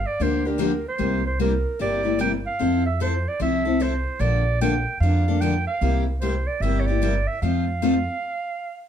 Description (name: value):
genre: acoustic string swing (jazz manouche)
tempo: 150 BPM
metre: 4/4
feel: swing 63% on 8ths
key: F major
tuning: A4 = 440 Hz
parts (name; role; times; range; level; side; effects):
- clear clarinet; melody; 0.0-8.8 s; Bb4 to G5; -27 LUFS; right 4 dB; none
- upright bass; bass; 0.0-8.1 s; G1 to F2; -24 LUFS; equal; none
- picked steel-string acoustic guitar; accompaniment; 0.2-7.9 s; C3 to A4; -24 LUFS; left 3 dB; none
room: moderate studio reverb, RT60 0.8 s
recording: dark, warm production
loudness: -20 LUFS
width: side -9 dB against mid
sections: 0.0-8.9 A section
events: stop 8.2-8.9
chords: 0.0 Gm7; 1.0 C7; 2.6 Fmaj7; 4.2 Bbmaj7; 5.8 C7; 7.4 F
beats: 0.20 0.60 | 1.00 1.40 1.80 2.21 | 2.61 3.01 3.41 3.81 | 4.21 4.62 5.02 5.42 | 5.82 6.22 6.62 7.02 | 7.42 7.82 8.22 8.62